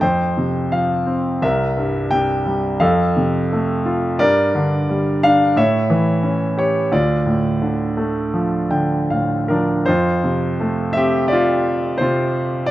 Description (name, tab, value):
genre	classical, lyrical solo piano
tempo	74-90 BPM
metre	4/4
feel	rubato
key	D minor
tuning	A4 = 441 Hz
part	clear concert grand piano	solo	0.0-12.7 s	C2 to G5	-16 LUFS	equal	none
room	light reverb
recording	close, detailed microphones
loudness	-16 LUFS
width	side -15 dB against mid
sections	0.0-9.9 A section; 9.9-12.7 B section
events	grand piano fill 8.3-9.9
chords	0.0 F5; 1.4 C7; 2.8 F; 4.2 Gm; 5.6 A7; 6.9 Dm; 9.9 F